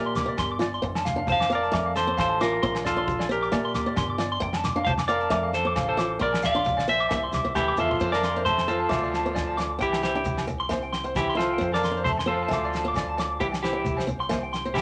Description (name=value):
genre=highlife guitar band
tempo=134 BPM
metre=4/4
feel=swing 55% on 16ths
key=F major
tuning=A4 = 440 Hz
part: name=clean electric guitar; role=melody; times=0.0-14.8 s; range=E4 to F5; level=-28 LUFS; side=equal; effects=none
part: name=picked swing-style acoustic guitar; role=accompaniment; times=0.0-14.8 s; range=A3 to F4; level=-34 LUFS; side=equal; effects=none
part: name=clean electric guitar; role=arpeggios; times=0.0-14.8 s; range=C5 to D6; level=-32 LUFS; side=equal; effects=spring reverb
part: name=fingered electric bass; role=bass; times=0.0-14.8 s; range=F1 to Bb2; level=-36 LUFS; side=equal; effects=none
part: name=damped 70s drum kit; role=drums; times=0.2-14.8 s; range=crash cymbal, kick drum, snare drum, toms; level=-35 LUFS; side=equal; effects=none
part: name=congas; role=percussion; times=0.2-14.8 s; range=none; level=-37 LUFS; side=equal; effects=none
part: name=maracas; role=percussion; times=0.2-14.8 s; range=none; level=-52 LUFS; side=equal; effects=none
part: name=agogo bells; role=percussion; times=0.4-14.8 s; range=none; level=-40 LUFS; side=equal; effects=none
part: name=growling tenor saxophone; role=second line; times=7.6-14.8 s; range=E3 to Bb3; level=-36 LUFS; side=equal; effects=none
room=moderate club reverb, RT60 0.5 s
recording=none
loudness=-25 LUFS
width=mono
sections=0.0-8.0 A section; 8.0-14.8 B section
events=drum fill 7.6-8.0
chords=0.0 Bbadd9; 0.8 F; 2.6 Bbadd9; 4.4 F; 6.2 Bbadd9; 7.1 C; 8.0 F; 8.9 Dm; 9.8 C; 11.6 F; 12.5 Dm; 13.4 C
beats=0.38 | 0.82 1.27 1.72 2.17 | 2.62 3.07 3.52 3.97 | 4.42 4.87 5.31 5.76 | 6.21 6.66 7.11 7.56 | 8.01 8.46 8.90 9.35 | 9.80 10.25 10.70 11.15 | 11.60 12.05 12.50 12.95 | 13.40 13.85 14.30 14.75